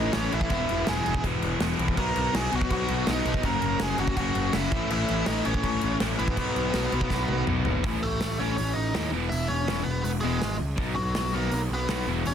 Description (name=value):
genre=punk rock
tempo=164 BPM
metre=4/4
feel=straight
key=B major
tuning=A4 = 445 Hz
part: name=biting lead guitar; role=melody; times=0.0-12.3 s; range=F#3 to A#5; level=-30 LUFS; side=equal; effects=overdrive
part: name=distorted electric guitar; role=riff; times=0.0-12.2 s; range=F#2 to E4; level=-34 LUFS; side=right 14 dB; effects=overdrive
part: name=overdriven electric guitar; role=riff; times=0.0-12.3 s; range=E2 to B3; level=-34 LUFS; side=equal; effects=none
part: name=overdriven semi-hollow guitar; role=riff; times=0.0-12.2 s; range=E2 to B3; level=-32 LUFS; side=left 13 dB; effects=none
part: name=fuzz picked electric bass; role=bass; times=0.0-12.3 s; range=E1 to D#2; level=-30 LUFS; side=equal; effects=overdrive
part: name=big rock drum kit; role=drums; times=0.1-12.3 s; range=crash cymbal, hi-hat, kick drum, snare drum, toms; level=-30 LUFS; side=equal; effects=none
room=light reverb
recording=dense, heavily limited modern master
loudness=-24 LUFS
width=side -8 dB against mid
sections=0.0-7.8 A section; 7.8-12.3 B section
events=drum fill 7.1-7.8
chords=0.0 A; 0.5 E; 2.0 B; 3.4 F#; 4.7 A; 6.4 B; 7.8 A; 9.1 E; 10.8 B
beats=0.14 | 0.51 0.87 1.24 1.61 | 1.97 2.34 2.71 3.07 | 3.44 3.81 4.17 4.54 | 4.91 5.27 5.64 6.00 | 6.37 6.74 7.10 7.47 | 7.84 8.21 8.57 8.94 | 9.31 9.68 10.05 10.41 | 10.78 11.15 11.52 11.89 | 12.26